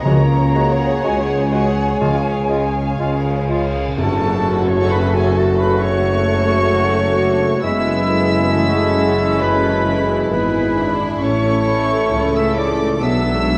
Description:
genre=classical, slow romantic movement for symphony orchestra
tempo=59-69 BPM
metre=4/4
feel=rubato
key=F# minor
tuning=A4 = 441 Hz
part: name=warm symphonic violin section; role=melody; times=0.0-13.6 s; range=G#5 to E6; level=-28 LUFS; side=equal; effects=none
part: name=warm symphonic violin section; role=second line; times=0.0-13.6 s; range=C#4 to F#5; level=-30 LUFS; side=equal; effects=none
part: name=dark symphonic viola section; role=accompaniment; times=0.0-13.6 s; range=E3 to C#5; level=-27 LUFS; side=equal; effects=none
part: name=concert harp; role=arpeggios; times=0.0-13.6 s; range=F#2 to F#5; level=-29 LUFS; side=equal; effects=none
part: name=silver concert flute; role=second line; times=0.1-13.6 s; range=G#4 to A#5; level=-26 LUFS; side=equal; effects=none
part: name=warm clarinet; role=second line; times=0.1-13.6 s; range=D4 to F#4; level=-28 LUFS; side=equal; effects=none
part: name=warm bassoon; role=accompaniment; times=0.1-13.6 s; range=F#3 to A3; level=-27 LUFS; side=equal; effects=none
part: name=mellow French horn section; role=sustained chords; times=0.1-13.6 s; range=F#3 to F#4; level=-26 LUFS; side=equal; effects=none
part: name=dark symphonic double bass section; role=bass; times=0.1-13.6 s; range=F#1 to C#2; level=-26 LUFS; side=equal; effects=none
part: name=mellow tuba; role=bass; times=0.1-13.6 s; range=F#1 to C#2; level=-27 LUFS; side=equal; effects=none
part: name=rich symphonic cello section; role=bass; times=0.1-13.6 s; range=F#2 to C#3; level=-29 LUFS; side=equal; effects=none
part: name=cymbal swell and tam-tam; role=percussion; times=0.1-7.6 s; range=none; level=-33 LUFS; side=equal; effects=none
part: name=timpani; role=percussion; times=0.1-5.3 s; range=F#2 to C#3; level=-24 LUFS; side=equal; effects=none
room=moderate scoring stage reverb, RT60 2.0 s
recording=worn, warbling old tape, cassette tape, warbly pitch drift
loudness=-17 LUFS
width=mono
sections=0.0-4.0 A section; 4.0-13.6 B section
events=band accent 4.0-4.9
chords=0.1 C#sus4; 2.0 C#; 4.0 F#m; 7.6 E/F#; 11.2 A; 13.0 Bm

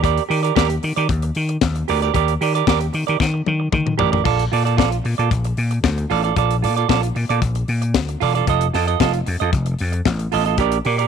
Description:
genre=disco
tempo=114 BPM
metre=4/4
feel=straight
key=Bb major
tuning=A4 = 440 Hz
part: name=semi-hollow electric guitar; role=accompaniment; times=0.0-11.1 s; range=F4 to Eb5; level=-20 LUFS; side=right 18 dB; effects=none
part: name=vintage slap bass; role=bass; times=0.0-11.1 s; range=E1 to Eb3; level=-20 LUFS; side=left 1 dB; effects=none
part: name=tight funk drum kit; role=drums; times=0.0-11.1 s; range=crash cymbal, hi-hat, kick drum, snare drum, toms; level=-22 LUFS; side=left 6 dB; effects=none
room=small room ambience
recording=1960s-style stereo with parts hard left and right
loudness=-16 LUFS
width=side -7 dB against mid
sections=0.0-11.1 A section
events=drum fill 3.2-4.3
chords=0.0 Ebmaj7; 4.3 Bbmaj7; 8.5 F7

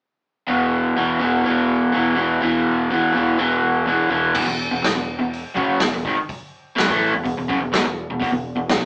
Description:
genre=garage rock duo or trio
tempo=124 BPM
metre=4/4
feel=straight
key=unclear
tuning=A4 = 440 Hz
part: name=crunchy overdriven guitar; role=riff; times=0.5-8.9 s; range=E2 to A3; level=-21 LUFS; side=equal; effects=none
part: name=growling picked electric bass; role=bass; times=0.5-8.9 s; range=E1 to B1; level=-34 LUFS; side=equal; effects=overdrive, tube saturation
part: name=crunchy breakbeat drum kit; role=drums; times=4.3-8.8 s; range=crash cymbal, hi-hat, kick drum, snare drum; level=-25 LUFS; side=equal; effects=none
room=moderate studio reverb, RT60 0.6 s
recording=band playing live in one room, small speaker sound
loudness=-20 LUFS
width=mono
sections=0.5-4.4 A section; 4.4-8.9 B section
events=none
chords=0.5 E5

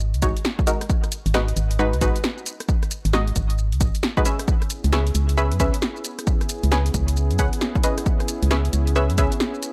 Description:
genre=UK garage, two-step garage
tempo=134 BPM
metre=4/4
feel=swing 63% on 16ths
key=G# minor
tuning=A4 = 442 Hz
part: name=organ-like FM bass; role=bass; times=0.0-9.3 s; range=G#1 to F#2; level=-23 LUFS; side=equal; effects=none
part: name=punchy analog drum machine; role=drums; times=0.0-9.7 s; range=hi-hat, rim click, shaker, snare drum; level=-30 LUFS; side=equal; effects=overdrive
part: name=punchy chord stab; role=stabs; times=0.2-9.3 s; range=G#3 to G#5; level=-28 LUFS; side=equal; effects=chorus, dub echo
part: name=electronic kick drum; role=drums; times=0.2-9.3 s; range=none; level=-24 LUFS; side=equal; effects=overdrive
part: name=warm analog pad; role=sustained chords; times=4.5-9.7 s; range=B3 to G#4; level=-34 LUFS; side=equal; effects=chorus, sidechain pumping
room=little or no reverb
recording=none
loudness=-22 LUFS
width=mono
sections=0.0-9.7 A section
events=none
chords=0.0 G#m7; 4.5 C#m7

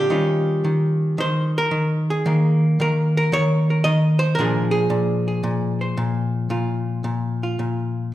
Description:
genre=solo jazz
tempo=112 BPM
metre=4/4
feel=swing 69% on 8ths, rubato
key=unclear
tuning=A4 = 440 Hz
part: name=archtop guitar, miked and amplified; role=solo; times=0.0-8.1 s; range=Bb2 to Eb5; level=-18 LUFS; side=equal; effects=none
room=wet recital hall reverb, RT60 1.5 s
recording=recorded in a church or concert hall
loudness=-18 LUFS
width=side -14 dB against mid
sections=0.0-8.1 A section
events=none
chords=0.1 Eb9; 4.4 Bb9

